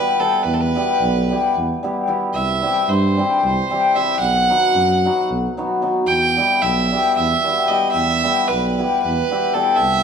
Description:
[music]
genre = balkan folk, Balkan wedding band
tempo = 224 BPM (eighths)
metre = 7/8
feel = straight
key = E harmonic minor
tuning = A4 = 439 Hz
[part]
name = clear fiddle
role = melody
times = 0.0-10.0 s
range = A4 to G5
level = -19 LUFS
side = right 4 dB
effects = none
[part]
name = cimbalom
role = accompaniment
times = 0.0-9.8 s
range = F#3 to G4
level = -19 LUFS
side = left 3 dB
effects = none
[part]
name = dark tuba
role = bass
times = 0.5-10.0 s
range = B1 to G2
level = -22 LUFS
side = right 1 dB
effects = none
[sound]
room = wet large studio reverb, RT60 1.3 s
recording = band playing live in one room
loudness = -15 LUFS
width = side -6 dB against mid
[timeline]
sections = 0.0-10.0 A section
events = none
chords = 0.0 Em; 2.3 C; 4.2 B; 6.1 Em

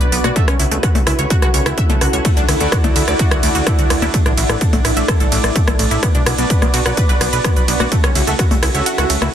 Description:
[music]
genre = melodic techno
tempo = 127 BPM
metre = 4/4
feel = straight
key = unclear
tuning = A4 = 440 Hz
[part]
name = evolving wavetable pad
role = sustained chords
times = 0.0-9.3 s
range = C#3 to A4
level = -26 LUFS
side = equal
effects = chorus, built-in reverb, sidechain pumping
[part]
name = wide unison pluck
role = arpeggios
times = 0.0-9.3 s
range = A3 to F#6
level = -22 LUFS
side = right 1 dB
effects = sidechain pumping, ping-pong delay
[part]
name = analog synth brass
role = stabs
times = 0.0-9.3 s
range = E4 to E5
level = -24 LUFS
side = right 1 dB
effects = chorus, sidechain pumping, ping-pong delay
[part]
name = plucky analog bass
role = bass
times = 0.0-9.3 s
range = A1 to D2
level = -21 LUFS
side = equal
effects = sidechain pumping
[part]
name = techno drum kit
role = drums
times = 0.0-9.3 s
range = hi-hat, percussion blips, ride cymbal, rim click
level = -20 LUFS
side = equal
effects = sidechain pumping on hats, sidechain pumping on cymbals, soft clipping on snare, sidechain pumping on perc
[part]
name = granular cloud pad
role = texture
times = 0.0-9.3 s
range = D4 to B5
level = -27 LUFS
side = equal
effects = built-in reverb, sidechain pumping
[part]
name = electronic kick drum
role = drums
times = 0.4-8.5 s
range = none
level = -16 LUFS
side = equal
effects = none
[sound]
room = little or no reverb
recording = dense, heavily limited modern master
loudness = -13 LUFS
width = side -9 dB against mid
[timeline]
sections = 0.0-9.3 A section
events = kick drops out 8.9-9.3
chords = 0.4 F#m7/C#; 2.2 Dadd9; 4.1 Asus4; 6.0 Bm; 7.9 F#m7/C#

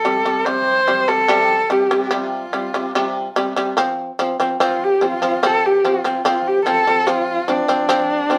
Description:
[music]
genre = mongolian traditional, Mongolian folk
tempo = 73 BPM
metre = 4/4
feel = straight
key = F gong mode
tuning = A4 = 440 Hz
[part]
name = warm horsehead fiddle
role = melody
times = 0.0-8.4 s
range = D4 to C5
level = -20 LUFS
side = equal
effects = none
[part]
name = shamisen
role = arpeggios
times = 0.0-8.4 s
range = C3 to C4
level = -21 LUFS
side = equal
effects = none
[sound]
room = moderate studio reverb, RT60 0.6 s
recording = band playing live in one room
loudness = -18 LUFS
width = mono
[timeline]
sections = 0.0-3.8 A section; 3.8-8.4 B section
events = none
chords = 0.0 C5; 3.8 F5

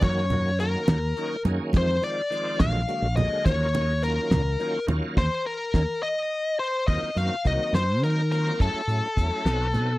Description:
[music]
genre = electric jazz fusion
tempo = 70 BPM (dotted quarters)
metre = 6/8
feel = straight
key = Eb dorian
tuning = A4 = 439 Hz
[part]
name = bluesy overdriven lead guitar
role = melody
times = 0.0-10.0 s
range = A4 to F5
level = -27 LUFS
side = left 2 dB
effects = distortion, slapback echo
[part]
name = bright tonewheel organ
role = accompaniment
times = 0.0-9.9 s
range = D3 to A4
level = -32 LUFS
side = right 2 dB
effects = slow rotary speaker, chorus vibrato
[part]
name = mellow fretless electric bass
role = bass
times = 0.0-10.0 s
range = Bb1 to Eb3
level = -25 LUFS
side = equal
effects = none
[part]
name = damped 70s drum kit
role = drums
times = 0.0-9.9 s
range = crash cymbal, hi-hat, kick drum, snare drum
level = -23 LUFS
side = equal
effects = none
[part]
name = congas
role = percussion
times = 0.0-5.9 s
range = none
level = -29 LUFS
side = right 2 dB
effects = none
[sound]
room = little or no reverb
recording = dry, close 1970s-style studio recording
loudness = -22 LUFS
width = side -18 dB against mid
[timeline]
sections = 0.0-6.9 A section; 6.9-10.0 B section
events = band accent 5.2-6.9; drum fill 6.6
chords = 0.0 Gb6; 1.7 Fm7; 2.6 Bb7b13; 3.5 Ebm9; 6.9 Ebm69; 8.6 Gbm9; 9.5 B7b9

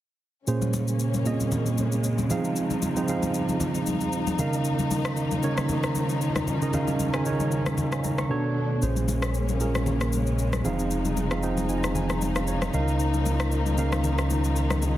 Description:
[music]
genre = amapiano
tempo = 115 BPM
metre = 4/4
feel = swing 55% on 16ths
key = Bb minor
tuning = A4 = 437 Hz
[part]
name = tine electric piano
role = accompaniment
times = 0.5-15.0 s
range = Bb2 to Db6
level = -26 LUFS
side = right 2 dB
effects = none
[part]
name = warm studio string section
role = sustained chords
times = 0.5-15.0 s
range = Db3 to Eb4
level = -31 LUFS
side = left 3 dB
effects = none
[part]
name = electronic shaker and rim click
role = drums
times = 0.5-15.0 s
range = none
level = -33 LUFS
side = left 2 dB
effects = none
[part]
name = congas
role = percussion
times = 0.6-15.0 s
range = none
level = -33 LUFS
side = left 3 dB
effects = none
[part]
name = round analog bass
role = bass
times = 8.8-15.0 s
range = F1 to Db2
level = -27 LUFS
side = left 1 dB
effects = none
[sound]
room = light reverb, studio ambience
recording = heavily compressed radio sound, multiband compression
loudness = -23 LUFS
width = side -13 dB against mid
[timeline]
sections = 0.5-15.0 A section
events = silent gap 8.3-8.8; tine electric piano fill 11.4-13.0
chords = 0.5 Bbm9; 2.3 Fm7; 4.4 Db69; 8.3 Bm9; 8.8 Bbm9; 10.6 Fm7; 12.7 Db69

